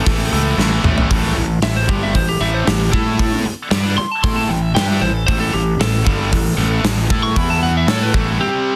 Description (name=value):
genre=hard rock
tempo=115 BPM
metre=4/4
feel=straight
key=unclear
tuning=A4 = 442 Hz
part: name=lightly driven lead guitar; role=melody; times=0.0-8.8 s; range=E4 to C#6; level=-24 LUFS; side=equal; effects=slapback echo, plate reverb
part: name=tight distorted guitar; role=riff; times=0.0-8.8 s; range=G2 to A4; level=-23 LUFS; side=equal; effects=distortion
part: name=fuzz fingered electric bass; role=bass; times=0.1-8.4 s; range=G1 to A2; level=-22 LUFS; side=equal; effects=overdrive
part: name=gated 80s drum kit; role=drums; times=0.1-8.3 s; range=hi-hat, kick drum, snare drum, toms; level=-21 LUFS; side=equal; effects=none
room=light reverb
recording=dense, heavily limited modern master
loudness=-17 LUFS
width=mono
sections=0.0-1.1 A section; 1.1-8.8 B section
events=drum fill 0.6-1.1; lead electric guitar solo 1.1-8.8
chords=0.0 A; 1.1 A5; 7.4 E5; 7.9 A5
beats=0.07 0.58 | 1.11 1.63 2.15 2.67 | 3.19 3.71 4.23 4.75 | 5.27 5.79 6.31 6.83 | 7.35 7.87 8.39